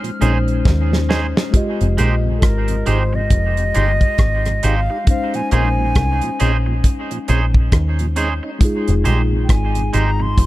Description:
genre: lovers rock reggae.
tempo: 68 BPM.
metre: 4/4.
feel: swing 60% on 16ths.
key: F minor.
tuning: A4 = 438 Hz.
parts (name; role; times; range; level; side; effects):
breathy silver concert flute; melody; 0.0-10.5 s; A4 to F6; -24 LUFS; equal; tape echo.
mellow tine electric piano; accompaniment; 0.0-10.5 s; Ab3 to Eb5; -24 LUFS; left 2 dB; slow stereo tremolo, dub echo.
mellow tonewheel organ; accompaniment; 0.0-10.3 s; F2 to Ab4; -29 LUFS; right 3 dB; overdrive, slow rotary speaker, dub echo.
damped 70s drum kit; drums; 0.0-10.5 s; hi-hat, kick drum, rim click, snare drum; -16 LUFS; equal; none.
twangy electric guitar; stabs; 0.2-10.2 s; Ab3 to C5; -25 LUFS; right 4 dB; dub echo.
deep dub picked electric bass; bass; 0.2-10.5 s; F1 to Eb2; -17 LUFS; equal; none.
room: studio ambience.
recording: none.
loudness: -14 LUFS.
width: side -16 dB against mid.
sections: 0.0-1.5 A section; 1.5-10.5 B section.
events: drum fill 0.7-1.5; flute solo 1.5-10.5.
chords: 0.0 Bbm11; 1.5 Fm9; 5.1 Bbm11; 8.6 Fm9.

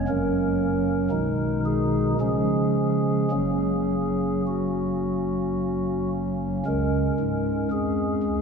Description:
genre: classical, chorale-style piece for pipe organ.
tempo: 52-59 BPM.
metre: 3/4.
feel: rubato.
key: F# major.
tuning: A4 = 440 Hz.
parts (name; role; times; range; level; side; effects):
pipe organ, stopped flute; solo; 0.0-8.4 s; F#1 to A#4; -22 LUFS; equal; none.
room: wet church reverb, RT60 2.6 s.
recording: minimal, uncompressed stereo recording.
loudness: -22 LUFS.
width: side -5 dB against mid.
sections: 0.0-6.7 A section; 6.7-8.4 B section.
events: none.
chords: 0.1 F#; 1.1 G#m/B; 2.2 C#; 3.3 F#; 6.7 Db.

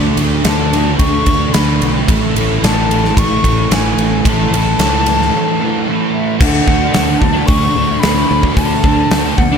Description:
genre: rock, shoegaze and dream pop.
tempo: 111 BPM.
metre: 4/4.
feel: straight.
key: unclear.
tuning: A4 = 441 Hz.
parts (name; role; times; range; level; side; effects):
thick fuzz guitar; riff; 0.0-9.6 s; A2 to D4; -15 LUFS; right 2 dB; distortion, ensemble chorus.
modern bright fingered electric bass; bass; 0.0-9.6 s; A1 to D2; -18 LUFS; equal; none.
huge arena drum kit; drums; 0.2-9.5 s; crash cymbal, hi-hat, kick drum, ride cymbal, snare drum; -16 LUFS; equal; none.
mellow silver concert flute; melody; 0.5-9.6 s; E5 to C#6; -19 LUFS; left 2 dB; digital delay.
room: small room ambience.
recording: none.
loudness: -11 LUFS.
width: side -6 dB against mid.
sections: 0.0-6.4 A section; 6.4-9.6 B section.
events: break 5.3-6.4.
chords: 0.0 D5; 2.1 A5; 6.4 D.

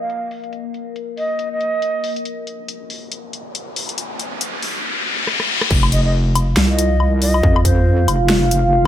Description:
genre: deep dubstep.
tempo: 139 BPM.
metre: 4/4.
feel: swing 58% on 16ths, half-time.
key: unclear.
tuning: A4 = 440 Hz.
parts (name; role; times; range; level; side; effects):
breathy bright low ney; melody; 0.0-2.1, 5.9-8.1 s; C5 to F5; -23 LUFS; right 1 dB; vintage 12-bit sampler grit, dub echo.
dark analog pad; sustained chords; 0.0-8.9 s; F4 to F5; -24 LUFS; right 1 dB; chorus, phaser.
dubstep drum kit; drums; 0.1-8.6 s; crash cymbal, hi-hat, rim click, snare drum, woodblock; -21 LUFS; left 2 dB; none.
riser; sound effects; 3.4-5.7 s; none; -23 LUFS; left 3 dB; none.
wobble bass; bass; 5.7-8.9 s; F1 to F2; -16 LUFS; equal; chorus.
electronic kick drum; drums; 5.7-7.8 s; none; -17 LUFS; equal; distortion.
room: light reverb.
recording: low-pass filter.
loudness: -15 LUFS.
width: side -11 dB against mid.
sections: 0.0-5.7 A section; 5.7-8.9 B section.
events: filter sweep on drum 0.0-5.7; filter sweep 0.0-5.7; riser 3.4-5.7; drum fill 5.3-5.7; drop 5.7-8.9.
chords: 0.0 F5.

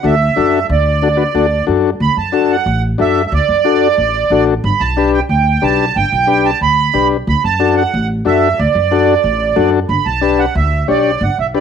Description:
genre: latin.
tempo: 182 BPM.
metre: 4/4.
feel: straight.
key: D major.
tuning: A4 = 442 Hz.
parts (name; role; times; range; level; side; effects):
accordion; melody; 0.0-11.6 s; D5 to B5; -15 LUFS; right 7 dB; light tremolo tuning, cassette tape, plate reverb.
combo organ; accompaniment; 0.0-11.6 s; D4 to C#5; -15 LUFS; left 9 dB; cassette tape, plate reverb.
upright bass; bass; 0.0-11.6 s; G1 to F#2; -18 LUFS; equal; none.
room: moderate studio reverb, RT60 0.6 s.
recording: home recording on cassette.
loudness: -11 LUFS.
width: side -7 dB against mid.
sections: 0.0-2.0 A section; 2.0-11.6 B section.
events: none.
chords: 0.0 D; 4.6 G; 7.3 D; 9.9 G.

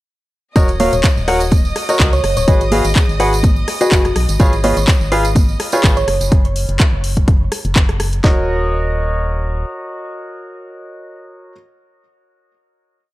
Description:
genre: piano house.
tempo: 125 BPM.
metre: 4/4.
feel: swing 55% on 16ths.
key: Eb minor.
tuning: A4 = 435 Hz.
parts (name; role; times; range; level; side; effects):
clear studio violin section; sustained chords; 0.6-6.3 s; Eb5 to Eb6; -28 LUFS; right 1 dB; sidechain pumping.
clear baby grand piano; riff; 0.6-11.5 s; F4 to Gb5; -20 LUFS; equal; sidechain pumping, tape echo.
organ-like FM bass; bass; 0.6-9.6 s; Eb1 to Db2; -19 LUFS; equal; sidechain pumping.
house drum kit; drums; 0.6-8.4 s; kick drum, snare drum; -12 LUFS; equal; overdrive, studio reverb.
house drum kit; drums; 0.6-8.2 s; handclaps, hi-hat, rim click; -21 LUFS; left 1 dB; overdrive, studio reverb.
tambourine and congas; percussion; 0.6-6.3 s; none; -25 LUFS; right 2 dB; none.
thumb-piano-like synth pluck; melody; 0.8-6.1 s; Gb4 to Db5; -22 LUFS; equal; chorus, tape echo.
room: small room ambience.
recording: dry, gritty hardware recording.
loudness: -12 LUFS.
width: side -17 dB against mid.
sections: 0.6-8.2 groove; 8.2-12.1 final chord.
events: none.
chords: 0.6 Ebm7; 2.5 Abm7; 4.4 Db7/Ab; 6.1 N.C.; 8.2 Ebm7.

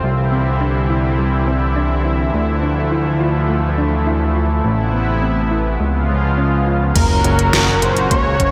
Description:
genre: synthwave.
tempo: 104 BPM.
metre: 4/4.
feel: straight.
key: unclear.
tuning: A4 = 440 Hz.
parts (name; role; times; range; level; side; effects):
lush unison pad; sustained chords; 0.0-8.5 s; Bb2 to Gb4; -22 LUFS; equal; chorus, sidechain pumping, shimmer reverb.
thumb-piano-like synth pluck; arpeggios; 0.0-8.5 s; G3 to Bb4; -26 LUFS; equal; chorus, digital delay, shimmer reverb.
fat analog bass; bass; 0.0-8.5 s; Gb1 to D2; -20 LUFS; equal; sidechain pumping.
unison lead; melody; 7.0-8.5 s; Bb4 to Db5; -20 LUFS; equal; delay, shimmer reverb.
electronic kick drum; drums; 7.0-8.5 s; none; -20 LUFS; equal; overdrive.
pop drum kit; drums; 7.0-8.5 s; crash cymbal, hi-hat, snare drum; -22 LUFS; equal; overdrive, gated reverb.
sub drop; sound effects; 7.0-8.5 s; none; -25 LUFS; equal; none.
room: wet lush hall reverb, RT60 2.6 s.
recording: bright 1980s-style digital production.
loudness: -17 LUFS.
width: mono.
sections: 0.0-7.0 A section; 7.0-8.5 B section.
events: impact 7.0-8.5.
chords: 0.0 Cadd9; 2.3 Dmadd9; 4.6 Amadd9; 5.8 C#7; 7.0 Gb.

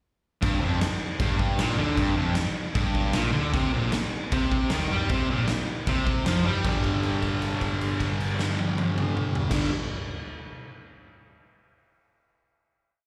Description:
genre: garage rock duo or trio.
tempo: 154 BPM.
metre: 4/4.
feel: straight.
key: G minor.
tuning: A4 = 440 Hz.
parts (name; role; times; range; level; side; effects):
fuzz guitar; riff; 0.4-9.7 s; F2 to G3; -29 LUFS; equal; distortion, slapback echo.
hollow-body short-scale picked electric bass; bass; 0.4-9.7 s; F1 to G2; -32 LUFS; equal; none.
raw garage drum kit; drums; 0.4-9.6 s; crash cymbal, kick drum, snare drum, toms; -30 LUFS; equal; none.
room: light reverb.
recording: live gig heard through the venue's PA, recital hall reverb.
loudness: -26 LUFS.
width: mono.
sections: 0.4-6.6 riff; 6.6-9.7 final chord.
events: held note 6.6-9.5.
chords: 0.4 Gm; 3.5 C5; 6.6 G5.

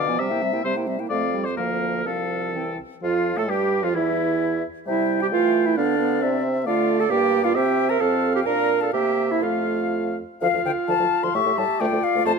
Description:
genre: quick classical-period movement for wind quintet.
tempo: 120-136 BPM.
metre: 2/4.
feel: rubato.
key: F major.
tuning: A4 = 440 Hz.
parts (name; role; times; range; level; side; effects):
concert flute; melody; 0.0-12.3 s; D5 to C#6; -26 LUFS; left 11 dB; none.
clear oboe; second line; 0.0-12.4 s; E4 to G5; -28 LUFS; left 6 dB; none.
clear French horn; accompaniment; 0.0-12.3 s; D3 to D4; -28 LUFS; left 1 dB; none.
clear clarinet; accompaniment; 0.0-12.4 s; Bb3 to Bb4; -24 LUFS; right 10 dB; none.
mellow bassoon; bass; 0.0-12.3 s; C2 to E3; -28 LUFS; right 3 dB; none.
room: moderate recital hall reverb, RT60 1.6 s.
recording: close, detailed microphones.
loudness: -20 LUFS.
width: side -5 dB against mid.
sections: 0.0-3.0 A section; 3.0-10.4 B section; 10.4-12.4 C section.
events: none.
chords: 0.2 C7; 1.1 F; 1.6 Bb/D; 2.1 F/C; 2.5 C; 3.0 F; 4.0 N.C.; 4.9 C; 5.8 Dm6; 6.2 C; 6.7 Dm; 7.1 Gm; 7.6 C; 8.0 F; 8.5 Bb; 8.9 C7; 9.4 F; 10.4 Dm; 11.3 A7; 11.8 Dm.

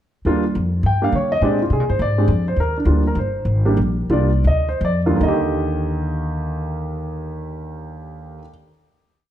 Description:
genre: jazz piano trio.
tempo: 145-208 BPM.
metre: 4/4.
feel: swing 61% on 8ths.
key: Eb major.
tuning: A4 = 441 Hz.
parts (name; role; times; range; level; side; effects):
upright bass; bass; 0.2-8.4 s; G1 to D3; -20 LUFS; equal; none.
warm concert grand piano; melody; 0.3-8.5 s; Eb2 to G5; -20 LUFS; right 1 dB; none.
room: moderate large studio reverb, RT60 1.2 s.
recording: dark, warm production.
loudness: -17 LUFS.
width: side -11 dB against mid.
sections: 0.3-5.2 A section; 5.2-8.5 final chord.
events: slowing down 2.6-5.2.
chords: 0.3 Ebmaj7; 1.4 Bb13; 2.6 Ebmaj7.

